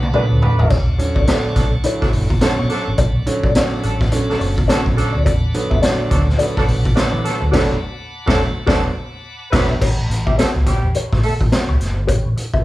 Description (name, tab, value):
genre	funk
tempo	106 BPM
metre	4/4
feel	swing 60% on 16ths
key	A mixolydian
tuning	A4 = 437 Hz
part	clean electric guitar	accompaniment	0.0-12.6 s	D4 to E5	-24 LUFS	left 4 dB	wah, tremolo
part	bright tonewheel organ	sustained chords	0.0-9.8 s	F#5 to D6	-33 LUFS	left 1 dB	slow rotary speaker
part	vintage muted fingered electric bass	bass	0.0-12.6 s	E1 to E3	-21 LUFS	equal	none
part	raw garage drum kit	drums	0.0-12.6 s	crash cymbal, hi-hat, kick drum, snare drum, splash cymbal, toms	-17 LUFS	equal	none
part	warm horn section	second line	0.1-11.3 s	F#3 to B4	-24 LUFS	right 2 dB	none
part	warm upright piano	stabs	0.1-9.7 s	D3 to E4	-24 LUFS	right 2 dB	none
room	light reverb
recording	band playing live in one room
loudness	-14 LUFS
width	side -17 dB against mid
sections	0.0-9.8 A section; 9.8-12.6 B section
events	drum fill 0.0-0.7; band accent 7.5-9.8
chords	0.0 E9sus4; 0.7 Bm9; 5.3 E9sus4; 9.8 A9